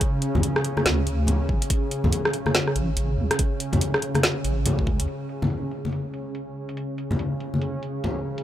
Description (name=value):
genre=deep dubstep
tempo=142 BPM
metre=4/4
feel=swing 61% on 16ths, half-time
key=unclear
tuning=A4 = 436 Hz
part: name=granular cloud pad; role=sustained chords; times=0.0-8.4 s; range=C#3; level=-29 LUFS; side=right 1 dB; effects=built-in reverb
part: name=electronic kick drum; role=drums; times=0.0-5.0 s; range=none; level=-24 LUFS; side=equal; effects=none
part: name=garage drum kit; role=drums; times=0.0-8.4 s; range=hi-hat, rim click, snare drum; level=-24 LUFS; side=equal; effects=low-pass filter on hats, low-pass filter on snare, low-pass filter on room
part: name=congas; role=percussion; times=0.3-8.1 s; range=none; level=-27 LUFS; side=left 2 dB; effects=none
part: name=deep soft wobble bass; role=bass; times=0.4-5.1 s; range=A1 to D2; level=-24 LUFS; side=equal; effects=chorus, tube saturation
room=little or no reverb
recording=dry, gritty hardware recording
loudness=-22 LUFS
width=side -12 dB against mid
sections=0.0-5.1 A section; 5.1-8.4 B section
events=filter sweep on drum 5.1-8.4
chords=0.0 D5; 5.1 N.C.